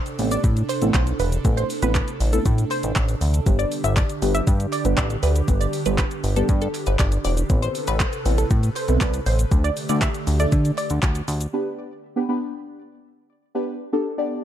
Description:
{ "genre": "dance-pop", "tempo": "119 BPM", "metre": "4/4", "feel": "straight", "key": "G major", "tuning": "A4 = 441 Hz", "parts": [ { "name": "wide unison pluck", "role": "melody", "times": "0.0-11.1 s", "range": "A4 to E5", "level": "-29 LUFS", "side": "moving between left 5 dB and right 8 dB", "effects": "auto-pan, sidechain pumping, tape echo" }, { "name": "airy breathy pad", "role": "sustained chords", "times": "0.0-11.5 s", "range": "C3 to B4", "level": "-30 LUFS", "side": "right 3 dB", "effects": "chorus, sidechain pumping" }, { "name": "smooth R&B drum kit", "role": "drums", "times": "0.1-11.5 s", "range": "handclaps, hi-hat, kick drum, shaker", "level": "-23 LUFS", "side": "equal", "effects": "none" }, { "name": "deep mellow chord stab", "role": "accompaniment", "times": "0.2-14.4 s", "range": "G3 to E5", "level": "-26 LUFS", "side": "equal", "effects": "chorus, phaser, sidechain pumping" }, { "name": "chorused synth bass", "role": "bass", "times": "0.2-11.5 s", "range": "E1 to D3", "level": "-21 LUFS", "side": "equal", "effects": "sidechain pumping" }, { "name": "group handclap", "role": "percussion", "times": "0.7-11.1 s", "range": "none", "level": "-39 LUFS", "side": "right 10 dB", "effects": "none" } ], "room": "little or no reverb", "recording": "dark, warm production", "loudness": "-19 LUFS", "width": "side -11 dB against mid", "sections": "0.0-11.5 A section; 11.5-14.4 B section", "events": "drop 0.0-11.5", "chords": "0.0 Amadd9; 3.5 G; 7.5 Amadd9; 9.5 Dsus4; 11.5 G", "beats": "0.44 0.94 | 1.45 1.95 2.46 2.96 | 3.46 3.97 4.47 4.98 | 5.48 5.99 6.49 6.99 | 7.50 8.00 8.51 9.01 | 9.52 10.02 10.52 11.03 | 11.53 12.04 12.54 13.04 | 13.55 14.05" }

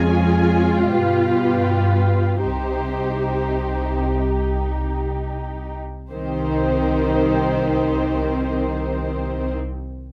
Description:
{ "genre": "classical, slow romantic movement for string orchestra", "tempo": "29-44 BPM (dotted quarters)", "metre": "6/8", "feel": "rubato", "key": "C minor", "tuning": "A4 = 440 Hz", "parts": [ { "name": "muted symphonic violin section", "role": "melody", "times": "0.0-9.5 s", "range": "B4 to Ab5", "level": "-32 LUFS", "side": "equal", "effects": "none" }, { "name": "muted symphonic violin section", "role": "second line", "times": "0.0-9.5 s", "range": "Db4 to C5", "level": "-30 LUFS", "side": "equal", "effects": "none" }, { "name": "muted symphonic viola section", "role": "accompaniment", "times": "0.0-9.5 s", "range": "Eb3 to G4", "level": "-25 LUFS", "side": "equal", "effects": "none" }, { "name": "muted symphonic cello section", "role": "bass", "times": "0.0-9.5 s", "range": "B2 to C4", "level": "-29 LUFS", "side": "equal", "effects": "none" }, { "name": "muted symphonic double bass section", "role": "bass", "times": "0.0-9.5 s", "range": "C2 to G2", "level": "-25 LUFS", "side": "equal", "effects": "none" } ], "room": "little or no reverb", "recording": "close, detailed microphones", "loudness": "-21 LUFS", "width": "mono", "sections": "0.0-6.1 A section; 6.1-10.0 B section", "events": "slowing down 0.0-6.1", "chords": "0.0 Db/F; 0.9 G7; 2.4 Cm", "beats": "0.89 | 2.42 4.15 | 6.12 8.08" }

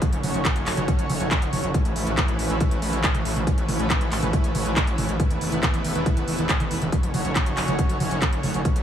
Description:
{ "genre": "uplifting trance", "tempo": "139 BPM", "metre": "4/4", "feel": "straight", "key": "A major", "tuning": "A4 = 440 Hz", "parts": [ { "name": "supersaw pad", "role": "sustained chords", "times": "0.0-8.8 s", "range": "A3 to C#5", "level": "-28 LUFS", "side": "right 1 dB", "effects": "sidechain pumping" }, { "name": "electronic kick drum", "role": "drums", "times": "0.0-8.7 s", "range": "none", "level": "-22 LUFS", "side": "equal", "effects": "none" }, { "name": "house drum kit", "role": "drums", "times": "0.0-8.8 s", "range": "handclaps, hi-hat, toms", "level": "-27 LUFS", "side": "equal", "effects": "none" }, { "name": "downlifter", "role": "sound effects", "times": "0.1-1.7 s", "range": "none", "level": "barely audible", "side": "none", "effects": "none" }, { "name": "gritty driven synth bass", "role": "bass", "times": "0.1-8.8 s", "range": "E1 to A1", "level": "-26 LUFS", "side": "equal", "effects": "sidechain pumping" } ], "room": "little or no reverb", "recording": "none", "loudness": "-20 LUFS", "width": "side -9 dB against mid", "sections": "0.0-8.8 A section", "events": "none", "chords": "0.0 F#m; 1.7 Aadd9; 5.2 Esus4; 6.9 F#m", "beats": "| 0.02 0.45 0.88 1.31 | 1.74 2.17 2.61 3.04 | 3.47 3.90 4.33 4.76 | 5.20 5.63 6.06 6.49 | 6.92 7.36 7.79 8.22 | 8.65" }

